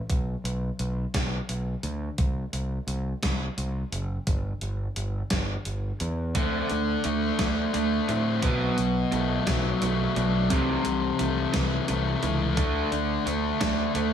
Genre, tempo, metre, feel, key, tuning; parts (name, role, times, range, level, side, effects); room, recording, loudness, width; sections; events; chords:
indie rock; 58 BPM (dotted quarters); 6/8; straight; A4 = 441 Hz
growling fingered electric bass; bass; 0.1-14.1 s; F#1 to A2; -29 LUFS; equal; overdrive
gated 80s digital drum machine; drums; 0.1-14.1 s; hi-hat, kick drum, snare drum; -29 LUFS; equal; gated reverb, gated reverb snare
fuzz guitar; riff; 6.3-14.1 s; B2 to E4; -27 LUFS; left 7 dB; distortion, analog delay
overdriven electric guitar; riff; 6.4-14.1 s; B2 to D4; -29 LUFS; right 8 dB; lush chorus, analog delay
light reverb; echo-heavy mix, small room ambience; -24 LUFS; side -8 dB against mid
0.0-14.1 A section
0.1 Bm; 2.2 N.C.; 4.3 Em/G; 6.3 D5; 8.4 Bm7; 10.5 C6; 12.6 D5